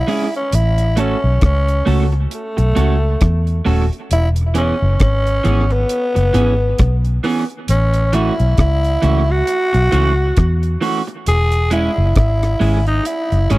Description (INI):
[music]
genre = roots reggae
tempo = 67 BPM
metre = 4/4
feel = swing 58% on 16ths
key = E major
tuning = A4 = 440 Hz
[part]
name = growling tenor saxophone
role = melody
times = 0.0-13.6 s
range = A3 to G#4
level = -19 LUFS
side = equal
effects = tape echo
[part]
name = vintage muted fingered electric bass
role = bass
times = 0.0-13.6 s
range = D#1 to E2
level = -15 LUFS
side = equal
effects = none
[part]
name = electric guitar at the edge of break-up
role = accompaniment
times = 0.1-13.6 s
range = E3 to A4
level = -21 LUFS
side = right 3 dB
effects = wide subtle chorus, tape echo
[part]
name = deep reggae drum kit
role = drums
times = 0.1-13.6 s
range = hi-hat, kick drum, rim click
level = -19 LUFS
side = equal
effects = tape echo
[sound]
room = small room ambience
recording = dry, close 1970s-style studio recording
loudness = -13 LUFS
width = side -19 dB against mid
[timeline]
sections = 0.0-13.6 A section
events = none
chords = 0.0 E6; 0.5 A6; 4.1 E6; 7.7 A6; 11.3 E6